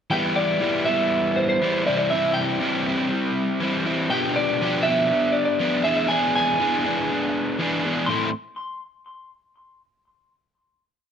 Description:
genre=rock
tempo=120 BPM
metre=4/4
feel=straight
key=A minor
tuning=A4 = 440 Hz
part: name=electric guitar through a small old amp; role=melody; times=0.1-8.3 s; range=C5 to C6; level=-23 LUFS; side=equal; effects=analog delay
part: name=crunchy overdriven guitar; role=riff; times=0.1-8.3 s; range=A2 to G#4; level=-22 LUFS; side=equal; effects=none
room=moderate studio reverb, RT60 0.9 s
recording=none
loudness=-20 LUFS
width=side -8 dB against mid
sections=0.1-8.1 pre-chorus; 8.1-10.1 final chord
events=none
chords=0.1 Em7; 1.8 C; 4.1 G7/B; 5.8 E7; 8.1 Am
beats=| 0.10 0.59 1.09 1.59 | 2.09 2.59 3.09 3.58 | 4.08 4.58 5.08 5.58 | 6.08 6.58 7.08 7.58 | 8.07

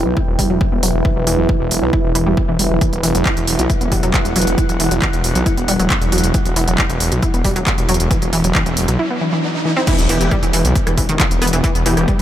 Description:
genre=driving peak-time techno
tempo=136 BPM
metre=4/4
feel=straight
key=E minor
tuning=A4 = 440 Hz
part: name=detuned saw bass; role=bass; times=0.0-12.2 s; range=E1 to B1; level=-19 LUFS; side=equal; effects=sidechain pumping
part: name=deep dark ambient pad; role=texture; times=0.0-12.2 s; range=E4 to G5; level=-23 LUFS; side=right 2 dB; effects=chorus, built-in reverb, sidechain pumping
part: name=analog pluck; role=riff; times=0.1-12.2 s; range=D#3 to E4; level=-20 LUFS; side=equal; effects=chorus, cassette tape, sidechain pumping, analog delay
part: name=electronic kick drum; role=drums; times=0.2-12.2 s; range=none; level=-18 LUFS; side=equal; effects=none
part: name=techno drum kit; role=drums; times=0.4-12.2 s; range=crash cymbal, handclaps, hi-hat, rim click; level=-21 LUFS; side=right 1 dB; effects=none
part: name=riser and impact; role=sound effects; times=8.2-11.6 s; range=none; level=-26 LUFS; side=right 1 dB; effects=none
part: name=swarming drone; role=drone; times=11.3-12.2 s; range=E3 to B3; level=-27 LUFS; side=left 1 dB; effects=none
part: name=rave stab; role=stabs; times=10.1-12.1 s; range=E3 to G4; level=-24 LUFS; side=left 1 dB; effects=none
room=light reverb, digital ambience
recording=none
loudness=-14 LUFS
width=side -11 dB against mid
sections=0.0-9.9 A section; 9.9-12.2 B section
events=filter sweep on synth arpeggio sound 0.0-9.9; riser 8.2-9.9; drop 9.9-12.2; impact 9.9-11.6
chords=0.0 Em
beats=0.17 0.61 | 1.05 1.49 1.93 2.37 | 2.81 3.26 3.70 4.14 | 4.58 5.02 5.46 5.90 | 6.34 6.79 7.23 7.67 | 8.11 8.55 8.99 9.43 | 9.87 10.31 10.76 11.20 | 11.64 12.08

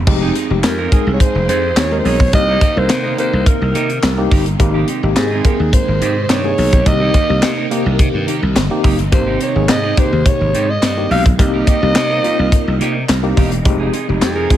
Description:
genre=early-eighties boogie funk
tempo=106 BPM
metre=4/4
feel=straight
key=F minor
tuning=A4 = 437 Hz
part: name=slap bass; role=bass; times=0.0-14.5 s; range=E1 to C3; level=-18 LUFS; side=equal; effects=none
part: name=tine electric piano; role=accompaniment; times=0.1-14.6 s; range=C3 to Bb4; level=-21 LUFS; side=left 2 dB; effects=overdrive, fast stereo tremolo
part: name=phased string machine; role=sustained chords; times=0.1-14.6 s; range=C3 to Ab4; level=-25 LUFS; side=equal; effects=ensemble chorus, phaser
part: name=clean electric guitar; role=riff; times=0.1-14.6 s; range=Bb3 to Bb4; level=-24 LUFS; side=right 7 dB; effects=lush chorus
part: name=tight funk drum kit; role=drums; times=0.1-14.6 s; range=crash cymbal, handclaps, hi-hat, kick drum, snare drum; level=-15 LUFS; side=equal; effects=none
part: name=breathy alto saxophone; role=melody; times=0.6-14.6 s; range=Ab4 to F5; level=-19 LUFS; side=right 1 dB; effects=slapback echo
room=small room ambience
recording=none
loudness=-12 LUFS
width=side -12 dB against mid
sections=0.1-14.6 A section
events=none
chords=0.1 Fm7; 2.3 Cm7; 4.6 Abmaj7; 6.9 Cm7; 9.1 Abmaj7; 11.4 Cm7; 13.7 Fm7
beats=| 0.07 0.64 1.20 1.77 | 2.33 2.90 3.47 4.03 | 4.60 5.16 5.73 6.30 | 6.86 7.43 7.99 8.56 | 9.13 9.69 10.26 10.82 | 11.39 11.96 12.52 13.09 | 13.65 14.22

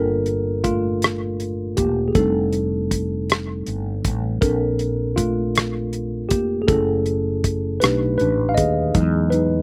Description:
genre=slow six-eight R&B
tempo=53 BPM (dotted quarters)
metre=6/8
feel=straight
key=G minor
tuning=A4 = 440 Hz
part: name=mellow tine electric piano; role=accompaniment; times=0.0-9.6 s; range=F#3 to F5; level=-23 LUFS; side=equal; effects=none
part: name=mellow fretless electric bass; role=bass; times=0.0-9.6 s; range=E1 to E2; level=-27 LUFS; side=equal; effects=none
part: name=damped 70s drum kit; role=drums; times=0.3-9.5 s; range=hi-hat, kick drum, rim click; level=-24 LUFS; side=equal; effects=none
room=little or no reverb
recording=recorded outdoors, with no room sound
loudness=-21 LUFS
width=mono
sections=0.0-9.6 A section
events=tine electric piano solo 0.0-9.6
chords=0.0 Gm7; 2.2 F13; 4.4 Bbmaj7; 6.7 F#m7; 7.8 B7alt; 8.9 Emaj7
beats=1.02 | 2.15 3.29 | 4.42 5.55 | 6.68 7.82 | 8.95

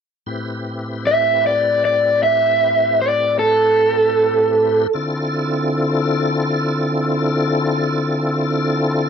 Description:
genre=blues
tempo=52 BPM (dotted quarters)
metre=12/8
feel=straight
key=A minor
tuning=A4 = 440 Hz
part: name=tonewheel organ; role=sustained chords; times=0.3-9.1 s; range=A2 to B4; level=-20 LUFS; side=left 1 dB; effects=slow rotary speaker, overdrive, chorus vibrato
part: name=raw garage guitar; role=melody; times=1.1-4.9 s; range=A4 to E5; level=-14 LUFS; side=right 1 dB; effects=overdrive
room=light reverb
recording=dry, close 1970s-style studio recording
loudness=-15 LUFS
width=side -7 dB against mid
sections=0.3-9.1 A section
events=none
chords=0.3 Am7; 4.9 Dm7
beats=| 0.29 1.45 2.61 3.77 | 4.92 6.08 7.24 8.40

